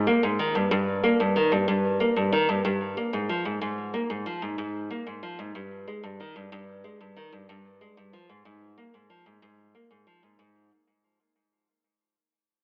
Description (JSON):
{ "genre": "folktronica", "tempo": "93 BPM", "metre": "4/4", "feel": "straight", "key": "unclear", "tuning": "A4 = 441 Hz", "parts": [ { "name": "nylon-string guitar", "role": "solo", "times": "0.0-10.7 s", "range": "G2 to Bb3", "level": "-27 LUFS", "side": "equal", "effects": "cassette tape, analog delay" } ], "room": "wet spring reverb, RT60 1.4 s, small room ambience", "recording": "home recording on cassette, telephone sound", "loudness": "-26 LUFS", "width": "mono", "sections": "0.0-10.7 A section", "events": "fade-out 0.0-10.7", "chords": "none" }